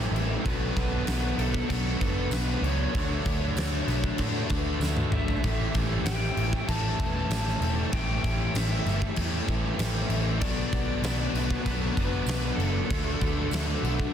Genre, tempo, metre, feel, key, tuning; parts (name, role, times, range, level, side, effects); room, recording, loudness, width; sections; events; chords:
rock, shoegaze and dream pop; 96 BPM; 4/4; straight; A mixolydian; A4 = 440 Hz
analog string pad; sustained chords; 0.0-14.1 s; A4 to D6; -43 LUFS; right 1 dB
fingerpicked twelve-string acoustic guitar; arpeggios; 0.0-14.1 s; F#4 to B4; -42 LUFS; left 9 dB; analog chorus, analog delay
biting overdriven guitar; riff; 0.0-14.1 s; A2 to G4; -34 LUFS; right 12 dB; reverse reverb
cranked stack guitar; riff; 0.0-14.1 s; A2 to D4; -36 LUFS; left 2 dB; overdrive
crunchy overdriven guitar; riff; 0.0-14.1 s; A2 to E4; -35 LUFS; left 10 dB; analog chorus
vintage muted picked electric bass; bass; 0.0-14.1 s; E1 to A2; -30 LUFS; equal
huge arena drum kit; drums; 0.0-14.1 s; crash cymbal, kick drum, snare drum, toms; -30 LUFS; equal
lead guitar through a small cranked amp; melody; 0.5-14.1 s; A4 to A5; -36 LUFS; right 1 dB; overdrive, analog delay
tambourine; percussion; 1.1-13.7 s; -45 LUFS; right 13 dB
little or no reverb; dense, heavily limited modern master; -25 LUFS; side -9 dB against mid
0.0-14.1 A section
drum fill 4.8-5.4
0.4 Bm7; 2.9 D69; 5.4 A7; 10.4 Bm7; 12.9 D69